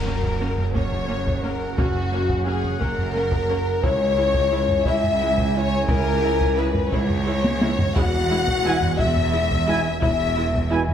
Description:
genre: cinematic, epic orchestral film score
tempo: 58 BPM (dotted quarters)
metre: 6/8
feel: straight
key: F# mixolydian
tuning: A4 = 437 Hz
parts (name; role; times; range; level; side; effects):
- rich symphonic violin section; melody; 0.0-10.7 s; F#4 to F#5; -32 LUFS; left 5 dB; none
- rich symphonic violin section; second line; 0.0-10.7 s; F#4 to F#5; -29 LUFS; left 3 dB; none
- dark French horn section; sustained chords; 0.0-10.7 s; F#4 to E5; -25 LUFS; left 4 dB; none
- warm trombone section; sustained chords; 0.0-10.8 s; B2 to E4; -31 LUFS; right 5 dB; none
- dark trumpet section; stabs; 0.0-10.8 s; F#5 to G#5; -32 LUFS; right 1 dB; none
- rich symphonic cello section; bass; 0.0-10.9 s; C#2 to F#2; -27 LUFS; right 2 dB; none
- rich symphonic double bass section; bass; 0.0-10.9 s; E1 to C#2; -28 LUFS; right 2 dB; none
- impact; sound effects; 0.0-1.8 s; none; -39 LUFS; equal; none
- rich symphonic viola section; accompaniment; 0.1-10.8 s; G#3 to E4; -32 LUFS; right 1 dB; none
- solo taiko drums; drums; 0.2-10.9 s; none; -25 LUFS; equal; none
room: moderate scoring stage reverb, RT60 2.2 s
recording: none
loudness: -19 LUFS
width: side -9 dB against mid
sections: 0.0-10.9 A section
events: impact 0.0-1.8; drum fill 7.4-8.0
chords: 0.0 F#; 3.8 C#m; 8.0 E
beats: 0.75 | 1.78 2.81 | 3.84 4.87 | 5.91 6.93 | 7.97 9.00 | 10.02

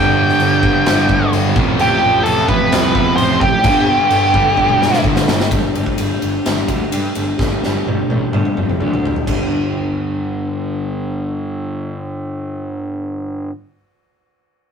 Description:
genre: quiet-loud alternative rock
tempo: 128 BPM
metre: 4/4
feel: straight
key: G mixolydian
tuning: A4 = 440 Hz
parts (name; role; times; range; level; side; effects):
- octave-fuzz lead guitar; melody; 0.0-5.0 s; G4 to G5; -15 LUFS; right 1 dB; distortion
- rich chamber string section; sustained chords; 0.0-5.5 s; G3 to D5; -29 LUFS; left 1 dB; none
- overdriven electric guitar; riff; 0.0-5.5 s; F2 to G3; -19 LUFS; left 4 dB; none
- thick fuzz guitar; riff; 0.0-5.5 s; F2 to G3; -19 LUFS; right 4 dB; distortion
- fuzz picked electric bass; bass; 0.0-13.5 s; G1 to G2; -21 LUFS; right 1 dB; overdrive
- big rock drum kit; drums; 0.3-9.4 s; crash cymbal, kick drum, ride cymbal, snare drum, toms; -19 LUFS; equal; none
- electric guitar through a small old amp; arpeggios; 5.5-13.5 s; G2 to G4; -23 LUFS; left 3 dB; slapback echo
room: wet small room reverb, RT60 0.5 s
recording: rough rehearsal-room recording, tube saturation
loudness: -14 LUFS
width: side -6 dB against mid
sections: 0.0-5.5 A section; 5.5-9.3 B section; 9.3-13.1 C section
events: drum fill 4.6-5.5, 7.4-9.3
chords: 0.0 Gsus2; 1.6 Fadd9/A; 3.6 Gadd9; 5.5 Gsus2; 9.3 G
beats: 0.40 0.86 1.33 | 1.79 2.25 2.72 3.18 | 3.65 4.11 4.58 5.04 | 5.51 5.98 6.45 6.92 | 7.39 7.86 8.33 8.80 | 9.28 9.75 10.22 10.70 | 11.17 11.64 12.12 12.59

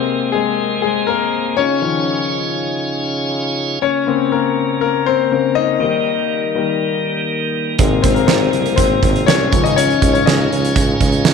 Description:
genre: piano-driven pop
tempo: 121 BPM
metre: 4/4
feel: straight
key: Ab major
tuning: A4 = 440 Hz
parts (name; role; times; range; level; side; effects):
- clear concert grand piano; accompaniment; 0.0-11.3 s; C3 to Eb5; -16 LUFS; left 9 dB; none
- tonewheel organ; sustained chords; 0.0-11.3 s; C3 to Ab4; -22 LUFS; right 2 dB; overdrive, slow rotary speaker
- warm tuba; bass; 7.8-11.3 s; Ab1 to Db2; -19 LUFS; right 2 dB; none
- huge arena drum kit; drums; 7.8-11.3 s; hi-hat, kick drum, snare drum; -16 LUFS; right 4 dB; none
room: moderate plate reverb, RT60 2.2 s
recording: 1960s-style stereo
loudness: -14 LUFS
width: side -6 dB against mid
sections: 0.0-11.3 A section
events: grand piano solo 0.0-11.3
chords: 0.0 Abadd9; 1.6 Dbadd9; 3.8 Bbmadd9/Db; 5.8 Eb; 7.8 Abadd9; 9.5 Dbadd9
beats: 0.34 0.83 1.33 | 1.83 2.32 2.82 3.32 | 3.81 4.31 4.81 5.30 | 5.80 6.30 6.79 7.29 | 7.79 8.28 8.78 9.28 | 9.77 10.27 10.76 11.26

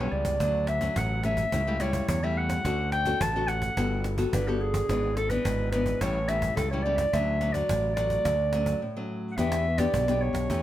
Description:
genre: samba and choro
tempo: 107 BPM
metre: 4/4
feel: straight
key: D major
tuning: A4 = 440 Hz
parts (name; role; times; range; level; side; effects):
- warm clarinet; melody; 0.0-10.6 s; G4 to A5; -28 LUFS; equal; none
- nylon-string guitar; accompaniment; 0.0-10.6 s; G#2 to A4; -31 LUFS; left 2 dB; none
- growling fingered electric bass; bass; 0.0-10.6 s; G1 to E2; -30 LUFS; equal; overdrive
- cajon; drums; 0.1-10.6 s; none; -34 LUFS; right 1 dB; none
room: moderate studio reverb, RT60 1.0 s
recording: none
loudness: -24 LUFS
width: side -13 dB against mid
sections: 0.0-9.4 A section; 9.4-10.6 B section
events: break 8.8-9.4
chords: 0.4 Dmaj7; 1.5 A7/C#; 2.7 Dmaj7; 3.8 Gmaj9; 4.9 E7/G#; 6.0 A7; 7.1 Dmaj7; 9.4 Em7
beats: | 0.41 0.97 1.53 2.09 | 2.65 3.21 3.77 4.33 | 4.89 5.46 6.02 6.58 | 7.14 7.70 8.26 8.82 | 9.38 9.94 10.50

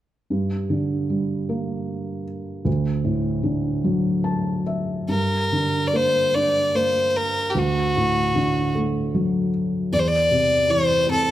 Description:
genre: celtic folk, Celtic slow air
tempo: 50 BPM (dotted quarters)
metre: 6/8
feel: uneven beats, rubato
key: G dorian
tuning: A4 = 437 Hz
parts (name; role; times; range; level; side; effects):
- felt-muted upright piano; accompaniment; 0.3-11.3 s; D2 to A5; -22 LUFS; equal; none
- clear fiddle; melody; 5.1-11.3 s; F#4 to D5; -20 LUFS; left 1 dB; none
room: moderate recital hall reverb, RT60 1.5 s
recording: none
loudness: -19 LUFS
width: side -13 dB against mid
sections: 0.3-5.1 A section; 5.1-11.3 B section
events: felt piano fill 3.9-5.1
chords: 0.3 Gm; 2.7 D; 5.1 Gm; 7.6 D; 9.9 C/E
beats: | 0.30 1.50 | 2.67 3.85 | 5.09 6.34 | 7.56 8.76 | 9.94 11.09

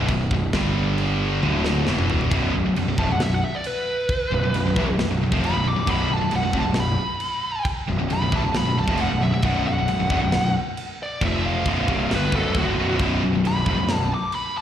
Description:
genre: heavy metal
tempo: 135 BPM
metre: 4/4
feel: straight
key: B minor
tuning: A4 = 440 Hz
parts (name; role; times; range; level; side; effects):
- high-gain distorted guitar; riff; 0.0-14.1 s; B1 to G3; -28 LUFS; left 8 dB; distortion, slapback echo
- high-gain distorted guitar; riff; 0.0-14.1 s; B1 to G3; -28 LUFS; right 8 dB; distortion, slapback echo
- overdriven electric guitar; riff; 0.0-14.1 s; B1 to G3; -29 LUFS; left 1 dB; none
- fuzz picked electric bass; bass; 0.0-14.1 s; B0 to A1; -24 LUFS; equal; overdrive
- tight metal drum kit; drums; 0.1-14.4 s; china cymbal, crash cymbal, kick drum, snare drum, toms; -28 LUFS; equal; none
- smooth overdriven lead guitar; melody; 3.0-14.6 s; F#4 to D6; -26 LUFS; equal; slapback echo, digital delay
room: small room ambience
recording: live gig heard through the venue's PA, recital hall reverb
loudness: -20 LUFS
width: side -10 dB against mid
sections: 0.0-2.3 A section; 2.3-14.6 B section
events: half time 0.0-2.3; drum fill 1.4-2.3; lead electric guitar solo 2.3-14.6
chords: 0.0 B5; 0.5 G5; 1.4 D5; 1.9 E5; 2.3 B5; 11.2 F5; 11.7 Bm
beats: 0.10 | 0.54 0.99 1.43 1.88 | 2.32 2.77 3.21 3.66 | 4.10 4.55 4.99 5.44 | 5.88 6.33 6.77 7.22 | 7.66 8.11 8.55 9.00 | 9.44 9.89 10.33 10.78 | 11.22 11.66 12.11 12.55 | 13.00 13.44 13.89 14.33

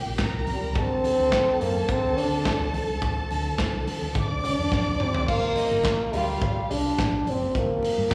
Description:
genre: disco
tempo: 106 BPM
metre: 4/4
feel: straight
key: G minor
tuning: A4 = 437 Hz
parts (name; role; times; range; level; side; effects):
- rich studio violin section; second line; 0.0-6.7 s; Eb4 to D6; -32 LUFS; equal; plate reverb, slapback echo
- tonewheel organ; sustained chords; 0.0-8.1 s; C3 to A4; -40 LUFS; equal; chorus vibrato, slow rotary speaker, plate reverb
- fingered electric bass; bass; 0.1-8.1 s; F#1 to D3; -32 LUFS; equal; none
- modern studio drum kit; drums; 0.2-8.1 s; crash cymbal, handclaps, hi-hat, kick drum, snare drum, toms; -32 LUFS; equal; none
- congas; percussion; 0.2-8.1 s; none; -38 LUFS; equal; none
- mellow trombone; melody; 0.5-8.1 s; G3 to D4; -27 LUFS; equal; plate reverb, slapback echo
room: moderate club reverb, RT60 0.7 s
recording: live gig heard through the venue's PA, recital hall reverb, studio reverb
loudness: -25 LUFS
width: mono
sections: 0.0-5.3 A section; 5.3-8.1 B section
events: drum fill 4.7-5.3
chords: 0.0 C7sus4; 0.8 D7b9; 5.3 Gm9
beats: 0.19 | 0.76 1.32 1.89 2.46 | 3.02 3.59 4.16 4.72 | 5.29 5.85 6.42 6.98 | 7.55 8.11

